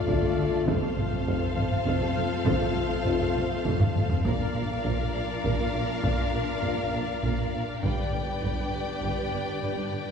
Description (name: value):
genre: cinematic, epic orchestral film score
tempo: 100 BPM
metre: 3/4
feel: straight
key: unclear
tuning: A4 = 440 Hz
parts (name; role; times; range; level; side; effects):
- warm symphonic violin section; melody; 0.0-10.1 s; F5 to G5; -36 LUFS; left 3 dB; none
- rich symphonic violin section; second line; 0.0-10.1 s; C5 to D5; -37 LUFS; left 3 dB; none
- dark symphonic string section; sustained chords; 0.0-10.1 s; C4 to F5; -33 LUFS; left 2 dB; none
- warm French horn section; sustained chords; 0.0-10.1 s; A3 to F4; -34 LUFS; left 6 dB; none
- dark symphonic viola section; accompaniment; 0.1-10.1 s; A4 to B4; -38 LUFS; equal; none
- warm symphonic cello section; bass; 0.1-10.1 s; D2 to Bb2; -35 LUFS; right 2 dB; none
- warm symphonic double bass section; bass; 0.1-10.0 s; F1 to D2; -34 LUFS; right 2 dB; none
- warm tuba; bass; 0.1-10.0 s; F1 to D2; -36 LUFS; right 2 dB; none
- taiko ensemble; drums; 0.1-9.6 s; none; -30 LUFS; equal; none
room: wet concert hall reverb, RT60 1.8 s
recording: heard from further back in the room, small room reverb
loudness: -25 LUFS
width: side -6 dB against mid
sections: 0.0-10.1 A section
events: drum fill 3.8-4.2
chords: 0.0 Dm; 0.7 F; 4.2 Bb; 7.8 G